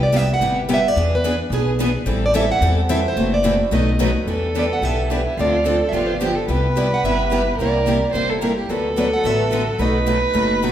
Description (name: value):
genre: acoustic string swing (jazz manouche)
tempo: 217 BPM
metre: 4/4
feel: swing 56% on 8ths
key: E minor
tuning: A4 = 441 Hz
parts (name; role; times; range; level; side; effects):
- picked plugged-in steel-string acoustic guitar; melody; 0.0-10.6 s; G#4 to F#5; -22 LUFS; right 2 dB; none
- picked steel-string acoustic guitar; accompaniment; 0.0-10.7 s; B2 to B4; -23 LUFS; left 3 dB; none
- picked steel-string acoustic guitar; accompaniment; 0.0-10.7 s; B2 to B4; -26 LUFS; right 4 dB; none
- upright bass; bass; 0.0-10.7 s; F#1 to E2; -22 LUFS; equal; none
- warm violin; second line; 4.2-10.7 s; E4 to C5; -22 LUFS; right 1 dB; none
room: wet recital hall reverb, RT60 1.4 s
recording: recorded in a church or concert hall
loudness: -16 LUFS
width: side -10 dB against mid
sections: 0.0-4.3 A section; 4.3-10.7 B section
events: none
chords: 0.0 Cmaj7; 1.0 E7; 2.1 Am7; 3.2 F#m7b5; 3.7 B7; 4.3 Em7; 5.4 Dm7; 5.9 G7; 6.5 Cmaj7; 7.6 C9; 8.7 D6; 9.8 B7